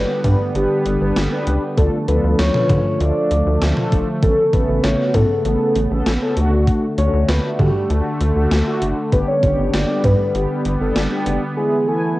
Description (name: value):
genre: synth-pop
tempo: 98 BPM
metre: 4/4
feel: straight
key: unclear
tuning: A4 = 442 Hz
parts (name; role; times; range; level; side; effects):
- soft octave-layered synth lead; melody; 0.0-12.2 s; G4 to D5; -21 LUFS; equal; chorus, phaser, tape echo
- sweeping resonant pad; sustained chords; 0.0-12.2 s; C#3 to B3; -22 LUFS; equal; chorus, cassette tape
- rubbery square bass; bass; 0.0-11.4 s; F#1 to D3; -19 LUFS; equal; none
- mellow synth brass; accompaniment; 0.1-12.2 s; A3 to G#5; -24 LUFS; left 1 dB; chorus, cassette tape
- gated 80s digital drum machine; drums; 0.2-11.4 s; hi-hat, kick drum, snare drum, toms; -20 LUFS; equal; gated reverb, gated reverb snare, overdrive, cassette tape
room: moderate spring reverb, RT60 1.7 s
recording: home recording on cassette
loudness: -15 LUFS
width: side -18 dB against mid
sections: 0.0-12.2 A section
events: none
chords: 0.0 G; 1.8 Dm; 4.2 Aadd9; 6.4 D; 9.1 G; 11.6 E